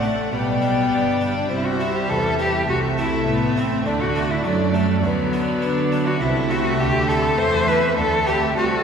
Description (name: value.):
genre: classical, baroque-style concerto movement with solo episodes.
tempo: 102 BPM.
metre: 4/4.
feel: straight.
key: unclear.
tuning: A4 = 440 Hz.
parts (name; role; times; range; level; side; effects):
dark chamber violin section; melody; 0.0-8.8 s; D5 to G5; -29 LUFS; left 4 dB; none.
rich cello; melody; 0.0-8.8 s; A3 to C5; -22 LUFS; left 2 dB; none.
rich chamber violin section; second line; 0.0-8.8 s; A4 to D5; -29 LUFS; left 2 dB; none.
harpsichord; accompaniment; 0.0-8.8 s; G2 to E4; -29 LUFS; right 1 dB; none.
rich studio viola section; accompaniment; 0.0-8.8 s; F#3 to A3; -28 LUFS; right 3 dB; none.
warm chamber cello section; bass; 0.0-8.8 s; G2 to D4; -26 LUFS; right 2 dB; none.
warm studio double bass section; bass; 0.0-8.8 s; G1 to D3; -26 LUFS; right 3 dB; none.
room: wet concert hall reverb, RT60 2.2 s.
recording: recorded in a church or concert hall.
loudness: -18 LUFS.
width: side -6 dB against mid.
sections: 0.0-8.8 A section.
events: none.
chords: 0.3 G/B; 1.5 C; 2.7 Am/C; 3.9 D; 5.0 Bm/D; 6.2 Am/C.